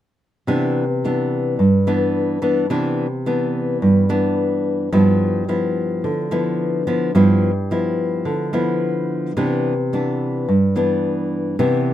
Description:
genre	bossa nova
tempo	108 BPM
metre	4/4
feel	straight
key	C major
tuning	A4 = 439 Hz
part	nylon-string guitar	accompaniment	0.5-11.9 s	G2 to E4	-17 LUFS	equal	none
room	light reverb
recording	close, detailed microphones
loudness	-17 LUFS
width	side -12 dB against mid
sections	0.5-11.9 A section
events	none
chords	0.5 Cmaj9; 4.9 G6; 9.4 Cmaj9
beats	| 0.47 1.03 1.58 2.14 | 2.70 3.25 3.81 4.37 | 4.92 5.48 6.03 6.59 | 7.14 7.70 8.26 8.81 | 9.37 9.92 10.48 11.04 | 11.59

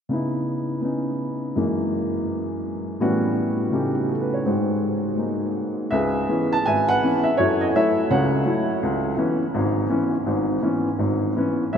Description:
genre	solo jazz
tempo	166 BPM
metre	4/4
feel	swing 64% on 8ths, rubato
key	C# minor from 5.9 s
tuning	A4 = 439 Hz
part	warm upright piano	solo	0.1-11.8 s	G#1 to A5	-20 LUFS	equal	none
room	wet cathedral reverb, RT60 6.3 s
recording	in a vast, echoing space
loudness	-20 LUFS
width	side -7 dB against mid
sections	0.1-5.9 A section; 5.9-11.8 B section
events	none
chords	0.1 C#m9; 1.6 F#9; 3.0 A13; 4.4 G#7; 5.9 C#m7; 7.4 F#m7; 8.8 C#m7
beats	| 0.11 0.48 0.85 1.21 | 1.57 1.93 2.29 2.65 | 3.00 3.36 3.72 4.08 | 4.45 4.81 5.18 5.55 | 5.93 6.29 6.66 7.02 | 7.38 7.74 8.10 8.46 | 8.81 9.17 9.53 9.89 | 10.25 10.62 10.98 11.36 | 11.73

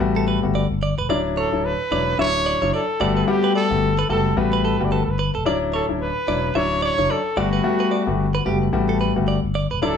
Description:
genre	afrobeats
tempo	110 BPM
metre	4/4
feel	swing 58% on 16ths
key	unclear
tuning	A4 = 441 Hz
part	warm grand piano	accompaniment	0.0-10.0 s	F#3 to F#4	-22 LUFS	left 5 dB	none
part	sub bass with octave	bass	0.0-10.0 s	D1 to A1	-24 LUFS	equal	none
part	direct-recorded clean electric guitar	riff	0.2-9.9 s	G4 to E5	-26 LUFS	right 6 dB	digital delay
part	breathy trumpet	melody	1.4-10.0 s	F#4 to D5	-24 LUFS	right 1 dB	digital delay
room	light reverb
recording	studio reverb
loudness	-18 LUFS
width	side -7 dB against mid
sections	0.0-10.0 A section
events	none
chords	0.0 Gmaj9; 1.1 Dmaj9; 3.0 Gmaj9; 5.5 Dmaj9; 7.4 Gmaj9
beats	0.00 0.55 | 1.09 1.64 2.18 2.73 | 3.27 3.82 4.37 4.91 | 5.46 6.00 6.55 7.09 | 7.64 8.18 8.73 9.28 | 9.82

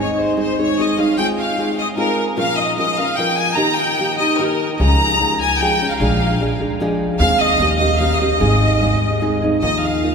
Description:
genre	mexican folk, mariachi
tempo	149 BPM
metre	3/4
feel	straight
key	Ab major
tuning	A4 = 439 Hz
part	clear studio violin section	melody	0.0-10.1 s	Bb4 to Bb5	-18 LUFS	equal	none
part	nylon-string guitar	accompaniment	0.0-10.1 s	Ab2 to Bb4	-19 LUFS	equal	none
part	upright bass	bass	4.8-10.1 s	Ab1 to Eb2	-20 LUFS	equal	none
room	wet cathedral reverb, RT60 6.2 s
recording	recorded in a church or concert hall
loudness	-15 LUFS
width	side -5 dB against mid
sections	0.0-9.6 A section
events	none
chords	0.0 Ab; 1.2 Fm/Ab; 2.4 Bbm; 3.6 Eb; 4.8 Db; 6.0 Bb7; 7.2 Ab/Eb; 7.6 Eb7; 8.4 Ab; 9.6 Ebsus2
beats	0.38 0.78 | 1.18 1.58 1.98 | 2.38 2.78 3.18 | 3.58 3.98 4.39 | 4.80 5.21 5.61 | 6.01 6.41 6.81 | 7.20 7.60 8.00 | 8.40 8.81 9.21 | 9.62 10.02

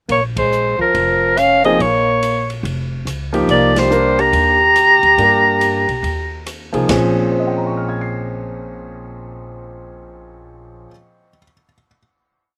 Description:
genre	modal jazz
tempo	141 BPM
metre	4/4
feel	swing 64% on 8ths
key	Bb dorian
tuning	A4 = 440 Hz
part	warm soprano saxophone	melody	0.1-6.5 s	Bb4 to Bb5	-15 LUFS	equal	none
part	warm trombone	second line	0.1-6.5 s	F3 to G4	-23 LUFS	equal	none
part	upright bass	bass	0.1-10.9 s	F1 to G2	-27 LUFS	equal	none
part	open jazz drum kit	drums	0.1-7.0 s	hi-hat, kick drum, ride cymbal, rim click, snare drum	-31 LUFS	equal	none
part	warm concert grand piano	accompaniment	1.6-12.0 s	Bb2 to C7	-22 LUFS	equal	none
room	little or no reverb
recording	recorded outdoors, with no room sound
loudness	-15 LUFS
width	mono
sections	0.1-6.9 A section; 6.9-10.3 final chord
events	band accent 0.3, 3.7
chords	0.1 Bbm; 3.5 Cm9; 6.9 Bbm9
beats	| 0.10 0.52 0.94 1.37 | 1.79 2.21 2.64 3.06 | 3.49 3.91 4.34 4.76 | 5.19 5.61 6.04 6.46 | 6.89 7.31 7.74 8.16 | 8.59 9.01 9.44 9.86

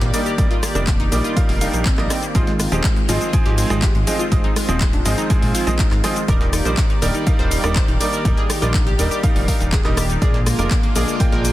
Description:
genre	progressive house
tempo	122 BPM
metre	4/4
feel	straight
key	Eb major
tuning	A4 = 440 Hz
part	filtered supersaw swell	sustained chords	0.0-11.5 s	D3 to D5	-27 LUFS	equal	sidechain pumping
part	analog pluck	arpeggios	0.0-11.5 s	Ab3 to C5	-26 LUFS	left 1 dB	chorus, sidechain pumping, tape echo
part	fat analog bass	bass	0.0-11.5 s	Eb1 to Bb1	-22 LUFS	equal	sidechain pumping
part	breakbeat sampler-style drum kit	drums	0.0-11.5 s	hi-hat, snare drum	-36 LUFS	right 1 dB	none
part	house drum kit	drums	0.0-11.5 s	handclaps, hi-hat, rim click, shaker	-26 LUFS	left 1 dB	none
part	bright concert grand piano	stabs	0.1-11.5 s	F3 to Ab5	-24 LUFS	right 2 dB	sidechain pumping, tape echo
part	electronic kick drum	drums	0.4-11.3 s	none	-18 LUFS	equal	none
room	digital ambience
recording	dense, heavily limited modern master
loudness	-15 LUFS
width	side -15 dB against mid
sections	0.0-11.5 A section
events	none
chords	0.0 Ebmaj7; 2.4 Ab6; 10.2 Bb7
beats	| 0.38 0.87 1.37 1.86 | 2.35 2.84 3.33 3.83 | 4.32 4.81 5.30 5.79 | 6.28 6.78 7.27 7.76 | 8.25 8.74 9.23 9.73 | 10.22 10.71 11.20

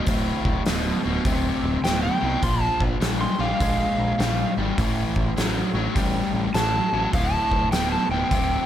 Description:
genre	blues rock power trio and southern rock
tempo	102 BPM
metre	4/4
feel	swing 65% on 8ths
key	D minor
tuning	A4 = 440 Hz
part	overdriven electric guitar	riff	0.0-8.7 s	D2 to G#3	-25 LUFS	left 1 dB	none
part	growling picked electric bass	bass	0.1-8.6 s	D1 to C2	-27 LUFS	equal	overdrive
part	oversized low-tuned drum kit	drums	0.1-8.5 s	hi-hat, kick drum, snare drum	-26 LUFS	equal	none
part	overdriven slide guitar	melody	1.8-8.7 s	F5 to C6	-26 LUFS	equal	plate reverb, analog delay
room	light reverb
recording	none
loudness	-20 LUFS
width	side -11 dB against mid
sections	0.0-8.7 A section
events	none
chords	0.0 D5; 2.4 Bb5; 4.8 A5; 7.1 D5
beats	| 0.08 0.66 1.25 1.84 | 2.43 3.02 3.60 4.19 | 4.78 5.37 5.96 6.54 | 7.13 7.72 8.31

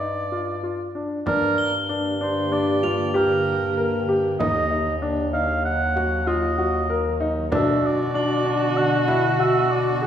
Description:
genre	contemporary instrumental, chamber music in an uneven meter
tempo	96 BPM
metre	5/4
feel	straight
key	unclear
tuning	A4 = 441 Hz
part	warm oboe	melody	0.0-10.1 s	Bb4 to Gb5	-26 LUFS	right 2 dB	none
part	warm grand piano	arpeggios	0.0-10.1 s	D4 to Bb4	-24 LUFS	left 1 dB	none
part	mellow bass clarinet	bass	0.0-10.1 s	Eb2 to B2	-26 LUFS	left 1 dB	none
part	granular cloud pad	sustained chords	2.1-10.1 s	D3 to G4	-29 LUFS	right 1 dB	built-in reverb
part	frame drum	percussion	1.3-9.4 s	none	-31 LUFS	right 2 dB	none
part	crotales	texture	1.6-9.1 s	F7 to G7	-35 LUFS	left 3 dB	none
part	warm viola	second line	7.5-10.1 s	F#4	-26 LUFS	right 3 dB	none
room	wet recital hall reverb, RT60 1.7 s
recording	recorded in a church or concert hall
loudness	-20 LUFS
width	side -9 dB against mid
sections	0.0-1.3 A section; 1.3-10.1 B section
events	none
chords	0.0 G5; 1.3 Gm; 4.4 Ebm; 7.5 Bm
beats	0.00 0.63 | 1.26 1.89 2.52 3.14 3.77 | 4.40 5.02 5.65 6.27 6.90 | 7.53 8.15 8.77 9.40 10.02

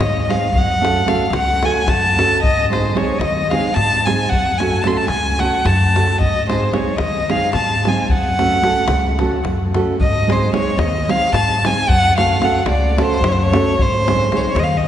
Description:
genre	balkan folk, Balkan wedding band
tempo	222 BPM (eighths)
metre	7/8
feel	straight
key	unclear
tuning	A4 = 440 Hz
part	warm violin	melody	0.0-14.9 s	B#4 to B#5	-18 LUFS	left 1 dB	none
part	upright bass	bass	0.0-14.9 s	C#2 to G#2	-20 LUFS	equal	none
part	davul	percussion	0.0-14.7 s	none	-23 LUFS	left 1 dB	none
part	nylon-string guitar	accompaniment	0.3-14.5 s	G#3 to A4	-21 LUFS	right 3 dB	none
room	wet church reverb, RT60 3.8 s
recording	recorded in a church or concert hall, nothing above 10.9 kHz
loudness	-14 LUFS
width	side -10 dB against mid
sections	0.0-10.0 A section; 10.0-14.9 A section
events	none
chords	0.0 G#; 0.5 F#m; 2.4 G#; 4.3 F#m; 6.2 G#; 8.1 F#m; 10.0 G#; 11.9 F#m; 13.8 G#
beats	0.00 0.27 | 0.54 0.81 1.08 1.35 1.62 1.89 2.16 | 2.43 2.70 2.97 3.24 3.51 3.78 4.05 | 4.32 4.59 4.86 5.13 5.40 5.67 5.94 | 6.21 6.48 6.75 7.02 7.29 7.56 7.83 | 8.10 8.37 8.64 8.91 9.19 9.46 9.73 | 10.00 10.27 10.54 10.81 11.08 11.35 11.62 | 11.89 12.16 12.43 12.70 12.97 13.24 13.52 | 13.79 14.06 14.33 14.60 14.87

